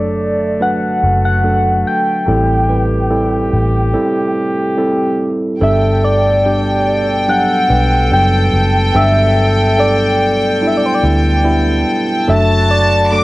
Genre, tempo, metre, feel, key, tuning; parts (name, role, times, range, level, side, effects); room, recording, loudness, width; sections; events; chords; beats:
pop ballad; 72 BPM; 4/4; straight; G major; A4 = 440 Hz
soft struck synth lead; melody; 0.0-13.2 s; C5 to G5; -17 LUFS; equal; chorus, cassette tape, plate reverb
tine electric piano; accompaniment; 0.0-13.2 s; G2 to B4; -17 LUFS; right 1 dB; cassette tape, plate reverb
dark brass ensemble; sustained chords; 0.0-13.2 s; B2 to A4; -22 LUFS; equal; cassette tape, plate reverb
vintage muted fingered electric bass; bass; 0.0-13.2 s; F#1 to D2; -16 LUFS; equal
clear studio violin section; second line; 5.6-13.2 s; G5 to D6; -17 LUFS; equal; cassette tape, plate reverb
light reverb; home recording on cassette; -11 LUFS; side -18 dB against mid
0.0-5.6 A section; 5.6-13.2 B section
break 3.9-5.6
0.0 D/F#; 2.3 Am7; 5.6 Gadd9; 12.3 D/F#
0.61 1.45 | 2.28 3.12 3.95 4.78 | 5.62 6.45 7.28 8.12 | 8.95 9.78 10.62 11.45 | 12.28 13.12